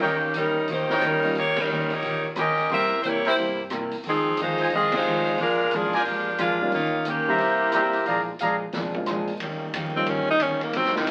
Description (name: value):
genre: jazz, big band swing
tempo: 179 BPM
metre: 4/4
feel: swing 64% on 8ths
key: Eb mixolydian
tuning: A4 = 440 Hz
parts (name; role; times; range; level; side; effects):
- edgy saxophone section; melody; 0.0-8.4 s; Eb3 to E5; -25 LUFS; equal; none
- picked steel-string acoustic guitar; accompaniment; 0.0-11.1 s; F2 to G4; -34 LUFS; equal; none
- clear trumpet section; stabs; 0.0-8.6 s; Eb4 to Bb5; -26 LUFS; equal; none
- upright bass; bass; 0.0-11.1 s; F1 to Bb2; -45 LUFS; equal; none
- vintage drum kit; drums; 0.0-11.1 s; crash cymbal, hi-hat, kick drum, ride cymbal, rim click, snare drum; -36 LUFS; equal; none
- warm upright piano; accompaniment; 1.2-10.4 s; F3 to G4; -34 LUFS; equal; none
- warm trombone section; sustained chords; 9.4-11.1 s; C3 to Eb4; -37 LUFS; equal; none
- clear tenor saxophone; melody; 10.0-11.1 s; Eb3 to Eb4; -25 LUFS; equal; none
room: wet studio reverb, RT60 0.7 s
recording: very old 78 rpm record, vinyl crackle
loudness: -24 LUFS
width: mono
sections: 0.0-9.4 A section; 9.4-11.1 B section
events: band accent 1.5, 4.9; tenor saxophone solo 9.4-11.1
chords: 0.0 Eb7; 2.7 C7; 4.0 Fm7; 5.4 Bb7; 6.7 Eb7; 7.4 C7; 8.1 Bb7; 9.4 Eb7